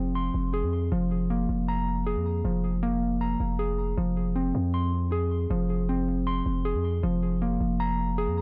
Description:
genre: hip hop, trap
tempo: 157 BPM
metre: 4/4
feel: half-time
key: F minor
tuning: A4 = 441 Hz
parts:
  - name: mellow electric guitar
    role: arpeggios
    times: 0.0-8.4 s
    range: F3 to C6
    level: -30 LUFS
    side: equal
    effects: low-pass filter, digital delay
  - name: long sustained 808-style bass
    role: bass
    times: 0.0-8.4 s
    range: F1 to F2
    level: -31 LUFS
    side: equal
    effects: none
room: little or no reverb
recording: none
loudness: -27 LUFS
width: mono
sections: 0.0-4.0 A section; 4.0-8.4 A section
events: none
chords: 0.0 Fm; 0.9 Fmadd11; 4.0 Fm; 7.0 Fmadd11

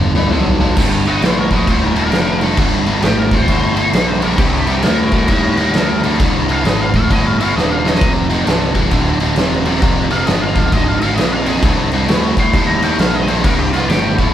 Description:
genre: blues rock power trio and southern rock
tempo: 133 BPM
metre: 4/4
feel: swing 63% on 8ths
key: C minor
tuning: A4 = 444 Hz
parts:
  - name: biting overdriven guitar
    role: riff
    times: 0.0-14.3 s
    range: C2 to E3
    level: -16 LUFS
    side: equal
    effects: none
  - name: fuzz picked electric bass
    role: bass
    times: 0.0-14.3 s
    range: C1 to Eb2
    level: -19 LUFS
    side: equal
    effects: overdrive
  - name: oversized low-tuned drum kit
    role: drums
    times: 0.0-14.3 s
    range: crash cymbal, kick drum, snare drum, toms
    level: -16 LUFS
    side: equal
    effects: none
  - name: octave-fuzz lead guitar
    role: melody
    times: 1.1-14.2 s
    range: F4 to C6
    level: -21 LUFS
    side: equal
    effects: wah, distortion
room: light reverb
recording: band playing live in one room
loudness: -12 LUFS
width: side -11 dB against mid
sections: 0.8-14.3 A section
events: drum fill 0.0-0.8, 7.6-8.0; lead electric guitar solo 0.8-14.3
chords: 0.0 G; 0.8 Cm7; 8.0 Fm7; 11.6 Cm7

